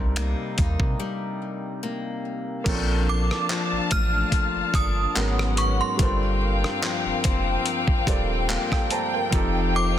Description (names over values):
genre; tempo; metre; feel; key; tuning
contemporary R&B; 72 BPM; 4/4; swing 54% on 16ths; Bb major; A4 = 439 Hz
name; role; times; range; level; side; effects
felt-muted upright piano; accompaniment; 0.0-10.0 s; Ab2 to Bb5; -30 LUFS; right 2 dB; none
picked steel-string acoustic guitar; arpeggios; 0.0-10.0 s; F2 to Eb4; -31 LUFS; left 6 dB; ping-pong delay
warm sub bass; bass; 0.0-10.0 s; Eb1 to C3; -26 LUFS; equal; none
dusty soul sampler-style drum kit; drums; 0.2-9.5 s; crash cymbal, finger snaps, handclaps, hi-hat, kick drum, rim click; -25 LUFS; equal; soft clipping on snare
muted studio string section; sustained chords; 2.7-10.0 s; Bb3 to A5; -29 LUFS; left 3 dB; sidechain pumping
synth chime; melody; 3.1-10.0 s; C6 to F6; -28 LUFS; right 1 dB; ensemble chorus, ping-pong delay
room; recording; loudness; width
studio reverb; dense, heavily limited modern master; -21 LUFS; side -11 dB against mid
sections
0.0-2.7 A section; 2.7-10.0 B section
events
break 1.0-2.7; felt piano fill 7.7-9.3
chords
0.0 Cm7; 2.7 Bbmaj7; 5.2 Abm11; 6.0 Gm11; 9.3 F7